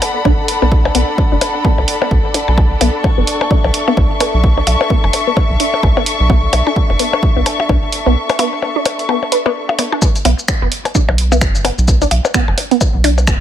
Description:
minimal techno; 129 BPM; 4/4; swing 59% on 16ths; B minor; A4 = 442 Hz
punchy analog drum machine; drums; 0.0-13.4 s; finger snaps, hi-hat, shaker; -20 LUFS; right 2 dB
percussion blips; percussion; 0.0-13.4 s; -20 LUFS; left 5 dB; digital delay
dark studio string section; texture; 0.0-10.0 s; D4 to C#6; -18 LUFS; left 2 dB; sidechain pumping
resonant blip pluck; riff; 0.3-13.1 s; B3 to B4; -19 LUFS; right 1 dB; phaser, sidechain pumping, ping-pong delay
rubbery square bass; bass; 0.3-13.4 s; F#1 to B1; -14 LUFS; equal; sidechain pumping
electronic kick drum; drums; 0.3-13.4 s; -15 LUFS; equal
light reverb, digital ambience; -12 LUFS; side -10 dB against mid
0.0-10.0 A section; 10.0-13.4 B section
filter sweep on synth arpeggio sound 0.0-10.0; break 8.2-10.0; drop 10.0-13.4
0.0 Bm7

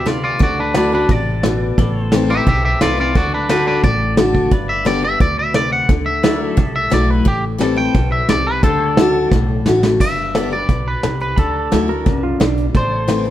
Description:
honky-tonk and classic country; 175 BPM; 4/4; straight; A4 = 440 Hz
twangy electric guitar; melody; 0.0-13.3 s; D4 to G5; -20 LUFS; equal
picked steel-string acoustic guitar; accompaniment; 0.0-13.3 s; E2 to G4; -20 LUFS; left 3 dB
pedal steel guitar; sustained chords; 0.0-13.3 s; A4 to A5; -31 LUFS; right 1 dB
upright bass; bass; 0.0-13.3 s; G1 to D2; -22 LUFS; equal
vintage brush drum kit; drums; 0.1-13.2 s; crash cymbal, hi-hat, kick drum, snare drum; -18 LUFS; equal
pedal steel guitar; second line; 11.9-12.7 s; D4 to Bb4; -24 LUFS; right 5 dB
light reverb; heard from further back in the room; -13 LUFS; side -12 dB against mid
0.0-10.0 A section; 10.0-13.3 B section
clean electric guitar solo 0.0-10.0; drum fill 9.3-10.0
0.4 Dadd9; 1.8 Am; 3.2 D; 4.5 G; 5.9 Dadd9; 7.3 Am7; 8.6 D; 10.0 G; 11.4 Dadd9; 12.7 Am

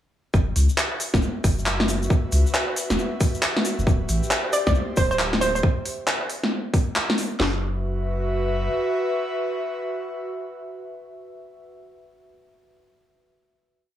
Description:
UK garage, two-step garage; 136 BPM; 4/4; swing 63% on 16ths; A4 = 441 Hz
saturated sub bass; bass; 0.3-8.7 s; D1 to C#2; -24 LUFS; equal
garage drum kit; drums; 0.3-7.5 s; kick drum, snare drum; -22 LUFS; equal
tube shaker; percussion; 0.3-5.6 s; -35 LUFS; left 4 dB
airy breathy pad; texture; 1.0-11.7 s; F#4 to E5; -29 LUFS; equal; chorus, sidechain pumping
garage drum kit; drums; 0.6-7.3 s; handclaps, hi-hat, snare drum; -24 LUFS; equal
hollow square pluck; melody; 4.5-5.6 s; B#4 to D5; -24 LUFS; right 2 dB; chorus, analog delay
light reverb, digital ambience; dry, gritty hardware recording, small room ambience; -21 LUFS; side -11 dB against mid
0.3-7.4 groove; 7.4-10.9 final chord
fade-in on analog synth pad 0.3-5.6
0.3 F#5; 3.9 Dsus2; 7.4 F#7sus4

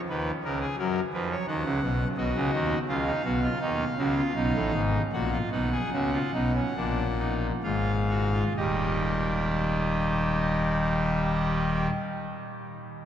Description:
classical, baroque-style 3-part fugue for pipe organ; 62-87 BPM; 4/4; straight; A4 = 440 Hz
pipe organ, trumpet; solo; 0.1-11.9 s; Eb1 to F#5; -25 LUFS; equal
wet cathedral reverb, RT60 6.5 s; dark, warm production; -25 LUFS; side -10 dB against mid
0.0-8.6 A section; 8.6-12.4 B section
slowing down 0.8-8.6
0.0 C#7(no3); 0.8 F#; 2.2 B; 3.6 B7; 5.1 Ebm/Bb; 6.8 Bb7; 8.6 Eb

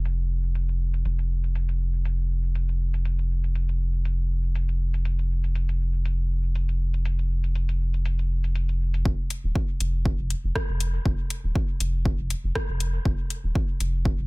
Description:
dub techno; 120 BPM; 4/4; swing 54% on 16ths; A4 = 439 Hz
round analog bass; bass; 0.0-14.3 s; Eb1 to F1; -24 LUFS; equal; sidechain pumping
deep house drum kit; drums; 0.1-13.9 s; hi-hat, rim click; -34 LUFS; left 1 dB; overdrive, low-pass filter on hats, low-pass filter on snare, dub echo
electronic kick drum; drums; 9.1-14.2 s; -26 LUFS; equal; overdrive
digital ambience; echo-heavy mix; -23 LUFS; side -27 dB against mid
0.0-9.1 A section; 9.1-14.3 B section

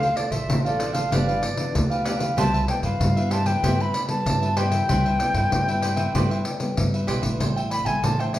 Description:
samba and choro; 96 BPM; 4/4; straight; C major; A4 = 440 Hz
silver concert flute; melody; 0.0-8.4 s; C5 to B5; -26 LUFS; left 1 dB
cavaquinho; accompaniment; 0.0-8.4 s; D4 to G5; -29 LUFS; right 3 dB
nylon-string guitar; accompaniment; 0.0-8.4 s; G2 to A4; -31 LUFS; left 1 dB
upright bass; bass; 0.0-8.4 s; G1 to G2; -26 LUFS; equal
pandeiro; percussion; 0.0-8.4 s; -25 LUFS; left 1 dB
wet large studio reverb, RT60 0.8 s; band playing live in one room; -20 LUFS; side -14 dB against mid
0.0-7.4 A section
0.0 Dm7; 1.1 G7; 2.4 Cmaj7; 7.4 Am7

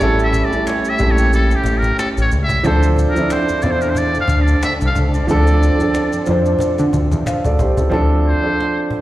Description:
R&B, neo-soul; 91 BPM; 4/4; swing 55% on 16ths; D minor; A4 = 440 Hz
trumpet with metal mute; melody; 0.0-8.9 s; G4 to F5; -21 LUFS; equal; plate reverb, slapback echo, analog delay
warm upright piano; accompaniment; 0.0-9.0 s; F3 to F5; -18 LUFS; right 2 dB; slapback echo
dark studio string section; sustained chords; 0.0-7.9 s; A3 to A4; -26 LUFS; equal
fat analog bass; bass; 0.0-8.3 s; A1 to D3; -16 LUFS; equal
cajon; drums; 0.0-9.0 s; -26 LUFS; left 1 dB
maracas and finger snaps; percussion; 0.0-7.9 s; -34 LUFS; left 4 dB; slapback echo
light reverb; live gig heard through the venue's PA, recital hall reverb; -14 LUFS; side -15 dB against mid
0.0-7.9 A section; 7.9-9.0 B section
drum fill 5.3-7.9
0.0 A7; 2.6 Dm7

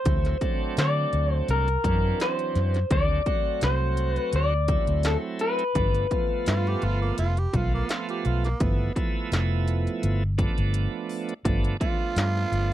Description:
straight-eighth soul blues; 84 BPM; 4/4; swing 54% on 16ths; G mixolydian; A4 = 439 Hz
electric guitar through a small old amp; melody; 0.0-10.7 s; A4 to D5; -27 LUFS; left 3 dB
bright tonewheel organ; accompaniment; 0.1-12.7 s; E3 to F#4; -31 LUFS; right 5 dB; overdrive, slow rotary speaker
vintage muted fingered electric bass; bass; 0.1-12.7 s; F1 to D3; -24 LUFS; equal
industrial drum kit; drums; 0.1-12.7 s; hi-hat, kick drum, snare drum; -27 LUFS; equal
growling tenor saxophone; second line; 6.5-12.7 s; Bb3 to G4; -31 LUFS; right 4 dB
little or no reverb; dry, close 1970s-style studio recording; -22 LUFS; side -12 dB against mid
0.0-11.5 A section; 11.5-12.7 B section
break 10.7-11.5; tenor saxophone solo 11.5-12.7
0.1 D9; 5.8 G9

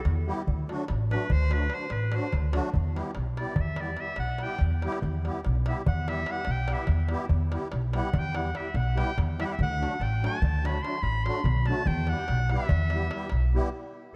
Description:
balkan folk, Balkan wedding band; 289 BPM (eighths); 11/8; straight; E minor; A4 = 436 Hz
bright clarinet; melody; 0.0-13.5 s; B4 to C6; -36 LUFS; equal; digital delay
upright bass; bass; 0.1-13.6 s; A1 to E2; -29 LUFS; equal
darbuka; percussion; 0.1-13.7 s; -36 LUFS; equal
musette accordion; accompaniment; 0.3-13.7 s; F#3 to G4; -37 LUFS; equal
light reverb, small room ambience; cassette tape; -28 LUFS; mono
0.0-14.2 A section
clarinet solo 0.0-14.2; drum fill 4.7-5.0; stop 13.7-14.2
0.5 D; 2.8 Em; 9.6 D; 11.9 Em

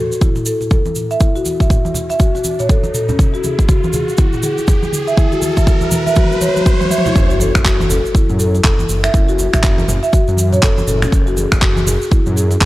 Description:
afro house; 121 BPM; 4/4; swing 60% on 16ths; F# minor; A4 = 440 Hz
marimba with soft mallets; arpeggios; 0.0-12.7 s; C#4 to E5; -18 LUFS; left 1 dB; sidechain pumping, analog delay
riser and impact; sound effects; 0.0-9.1 s; -25 LUFS; equal
congas; percussion; 0.1-12.7 s; -24 LUFS; right 2 dB
tube shaker; percussion; 0.1-12.7 s; -27 LUFS; right 2 dB
electronic kick drum; drums; 0.2-12.7 s; -13 LUFS; equal
house drum kit; drums; 0.2-12.7 s; finger snaps, handclaps, toms; -21 LUFS; equal
dark detuned saw bass; bass; 7.2-12.7 s; F#1 to F#2; -17 LUFS; equal; sidechain pumping
light reverb; dry, gritty hardware recording; -12 LUFS; side -17 dB against mid
0.0-7.2 A section; 7.2-12.7 B section
build-up 0.0-7.2; drum fill 0.0-7.2; riser 0.0-7.2; drop 7.2-12.7; impact 7.2-9.1
0.0 F#m7; 3.2 C#m (rootless); 7.2 F#m7; 11.1 N.C.

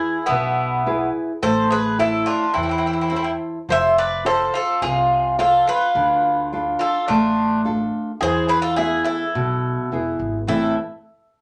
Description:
greek folk; 106 BPM; 4/4; straight; A harmonic minor; A4 = 441 Hz
Greek bouzouki; melody; 0.0-10.7 s; E4 to E5; -25 LUFS; equal
Greek bouzouki; second line; 0.0-10.7 s; B3 to C5; -23 LUFS; equal
nylon-string guitar; accompaniment; 0.0-10.8 s; A2 to C5; -26 LUFS; equal
upright bass; bass; 0.3-10.7 s; E1 to E2; -33 LUFS; equal
wet studio reverb, RT60 0.5 s; -20 LUFS; mono
0.0-10.5 A section
0.0 E; 1.4 Am; 3.7 F; 6.0 Dm; 8.2 E; 10.5 Am

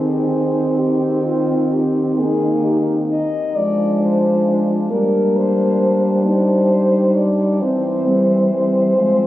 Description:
classical, lyrical piece for horn quartet; 44 BPM (dotted quarters); 6/8; rubato; A4 = 439 Hz
mellow French horn; melody; 0.0-9.3 s; F4 to Eb5; -19 LUFS; left 2 dB
warm French horn; second line; 0.0-9.3 s; C4 to Eb4; -24 LUFS; right 3 dB
dark French horn; accompaniment; 0.0-9.3 s; G3 to Eb4; -20 LUFS; equal
mellow French horn; bass; 0.0-9.3 s; Eb3 to G3; -20 LUFS; equal
wet cathedral reverb, RT60 6.5 s; recorded on a phone in the room, studio ambience, compression; -14 LUFS; side -14 dB against mid
0.0-9.3 A section
0.0 Cm/Eb; 2.2 Eb5; 3.6 Ddim/F; 4.9 Eb/G; 7.6 C/E

